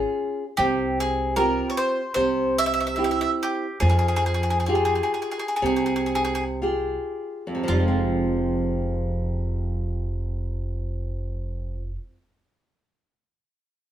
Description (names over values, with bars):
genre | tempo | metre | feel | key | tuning
italian folk, Italian serenade | 55-78 BPM | 4/4 | swing 54% on 8ths | F harmonic minor | A4 = 440 Hz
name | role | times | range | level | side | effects
nylon-string guitar | accompaniment | 0.0-12.1 s | F2 to Ab4 | -26 LUFS | right 1 dB | none
upright bass | bass | 0.0-12.0 s | F1 to F2 | -27 LUFS | right 1 dB | none
bowl-back mandolin | melody | 0.6-11.9 s | F4 to E5 | -25 LUFS | equal | none
room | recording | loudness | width
wet studio reverb, RT60 0.6 s | heard from further back in the room | -22 LUFS | side -11 dB against mid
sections
0.0-7.7 A section; 7.7-12.0 B section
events
slowing down 0.6-7.7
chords
0.0 Db; 0.6 Csus4; 2.2 C; 3.8 Fmadd9; 7.7 Fm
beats
| 0.58 1.36 2.15 2.97 | 3.82 4.70 5.63 6.62 | 7.69 8.78 9.86 10.95